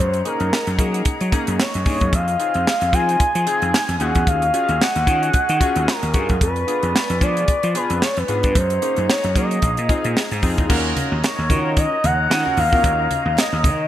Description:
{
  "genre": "early-eighties boogie funk",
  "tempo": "112 BPM",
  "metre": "4/4",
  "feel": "swing 56% on 16ths",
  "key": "Eb minor",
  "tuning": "A4 = 440 Hz",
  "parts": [
    { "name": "expressive portamento lead", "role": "melody", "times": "0.0-13.9 s", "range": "Bb4 to Ab5", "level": "-21 LUFS", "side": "equal", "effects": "chorus" },
    { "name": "breathy flute section", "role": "sustained chords", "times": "0.0-13.9 s", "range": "Eb4 to Db6", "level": "-29 LUFS", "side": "left 1 dB", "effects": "none" },
    { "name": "gritty slap bass", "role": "bass", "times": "0.0-13.9 s", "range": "Bb1 to Gb3", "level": "-22 LUFS", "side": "equal", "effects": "overdrive" },
    { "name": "tight funk drum kit", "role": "drums", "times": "0.1-13.8 s", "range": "crash cymbal, hi-hat, kick drum, snare drum", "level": "-20 LUFS", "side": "equal", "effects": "none" },
    { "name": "chorused polysynth", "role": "accompaniment", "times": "0.2-13.3 s", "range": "Bb3 to Bb4", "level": "-26 LUFS", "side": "left 2 dB", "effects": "none" },
    { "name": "congas", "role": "percussion", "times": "11.0-13.8 s", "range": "none", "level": "-28 LUFS", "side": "right 1 dB", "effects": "none" }
  ],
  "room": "light reverb",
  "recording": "bright 1980s-style digital production",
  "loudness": "-16 LUFS",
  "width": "side -12 dB against mid",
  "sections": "0.0-10.7 A section; 10.7-13.9 B section",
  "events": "none",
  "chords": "0.0 Gb69; 2.1 Fm7; 4.0 Ebm11; 6.4 Db7b9/F; 8.6 Gb69; 9.6 Bb7sus4; 10.7 Ebm7"
}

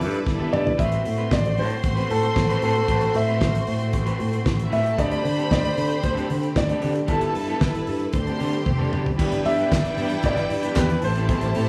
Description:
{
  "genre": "disco",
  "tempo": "114 BPM",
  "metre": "4/4",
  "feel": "straight",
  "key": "A dorian",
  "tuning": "A4 = 441 Hz",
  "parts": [
    { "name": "warm concert grand piano", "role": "melody", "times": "0.0-11.7 s", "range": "A4 to E5", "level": "-28 LUFS", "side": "equal", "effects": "none" },
    { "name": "warm studio violin section", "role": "second line", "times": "0.0-11.7 s", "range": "E4 to D6", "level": "-34 LUFS", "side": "equal", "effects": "none" },
    { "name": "electric guitar at the edge of break-up", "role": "accompaniment", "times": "0.0-11.7 s", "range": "E3 to B4", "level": "-33 LUFS", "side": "equal", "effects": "none" },
    { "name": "clear symphonic string section", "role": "sustained chords", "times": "0.0-11.7 s", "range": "D3 to B4", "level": "-34 LUFS", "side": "equal", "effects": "none" },
    { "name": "fingered electric bass", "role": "bass", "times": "0.0-11.7 s", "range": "F1 to D3", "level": "-27 LUFS", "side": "equal", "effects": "none" },
    { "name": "damped 70s drum kit", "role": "drums", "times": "0.0-11.7 s", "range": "crash cymbal, hi-hat, kick drum, snare drum, toms", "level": "-27 LUFS", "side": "equal", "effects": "none" },
    { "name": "group handclap", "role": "percussion", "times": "9.7-10.9 s", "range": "none", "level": "-38 LUFS", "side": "equal", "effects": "none" }
  ],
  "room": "moderate large studio reverb, RT60 0.8 s",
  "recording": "band playing live in one room, studio reverb",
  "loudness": "-22 LUFS",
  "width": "mono",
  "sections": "0.0-9.2 A section; 9.2-11.7 B section",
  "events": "drum fill 0.3-0.8, 8.7-9.2",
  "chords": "0.0 G69; 0.8 Am69; 5.0 D7sus4; 7.1 G69; 8.1 D7sus4; 9.2 G6; 11.0 Am7"
}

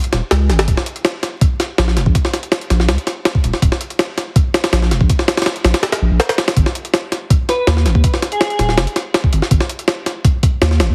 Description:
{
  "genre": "drum and bass, jungle",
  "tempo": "163 BPM",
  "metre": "4/4",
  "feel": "straight",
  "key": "G# minor",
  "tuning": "A4 = 440 Hz",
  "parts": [
    { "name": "jungle sampler-style drum kit", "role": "drums", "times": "0.0-10.9 s", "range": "hi-hat, kick drum, snare drum", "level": "-17 LUFS", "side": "equal", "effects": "small room reverb" },
    { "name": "saturated sub bass", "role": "bass", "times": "0.1-10.9 s", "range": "D#1 to D#2", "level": "-17 LUFS", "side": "equal", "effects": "none" },
    { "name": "airy dreamy lead", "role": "melody", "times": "7.5-8.7 s", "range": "G#4 to B4", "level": "-24 LUFS", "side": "equal", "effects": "chorus, cassette tape, dub echo" }
  ],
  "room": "light reverb",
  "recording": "heavily compressed radio sound, multiband compression, vinyl crackle",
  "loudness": "-16 LUFS",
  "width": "mono",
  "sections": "0.0-10.9 A section",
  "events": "none",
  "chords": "0.0 G#5; 0.7 D#5; 6.6 G#5"
}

